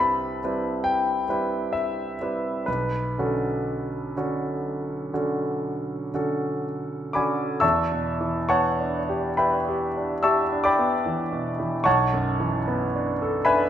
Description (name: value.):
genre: classical, impressionist solo piano.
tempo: 58-76 BPM.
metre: 5/4.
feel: rubato.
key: unclear.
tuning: A4 = 440 Hz.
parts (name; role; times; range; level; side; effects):
clear concert grand piano; solo; 0.0-13.7 s; B1 to E6; -22 LUFS; equal; none.
room: moderate recital hall reverb, RT60 1.6 s.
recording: minimal, uncompressed stereo recording.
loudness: -22 LUFS.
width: side -10 dB against mid.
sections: 0.0-7.6 A section; 7.6-13.7 B section.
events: none.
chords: 0.0 Cmaj7; 2.7 Bm9; 7.6 Em7; 11.9 Bm11.